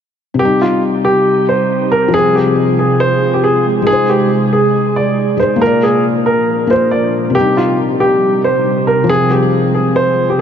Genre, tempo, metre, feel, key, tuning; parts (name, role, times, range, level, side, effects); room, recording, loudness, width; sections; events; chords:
hip hop; 138 BPM; 4/4; half-time; C minor; A4 = 438 Hz
felt-muted upright piano; accompaniment; 0.3-10.4 s; C3 to D5; -16 LUFS; left 5 dB; low-pass filter
dark grand piano; melody; 0.4-10.4 s; F4 to D5; -13 LUFS; right 1 dB; low-pass filter, ping-pong delay
glassy FM pad; sustained chords; 0.9-10.4 s; Bb2 to Bb4; -17 LUFS; right 3 dB; ensemble chorus, built-in reverb
light reverb, small room ambience; -10 LUFS; side -8 dB against mid
0.4-10.4 A section
0.4 Cm; 2.1 Fm; 3.9 Ab; 5.6 Bb; 7.4 Cm; 9.1 Fm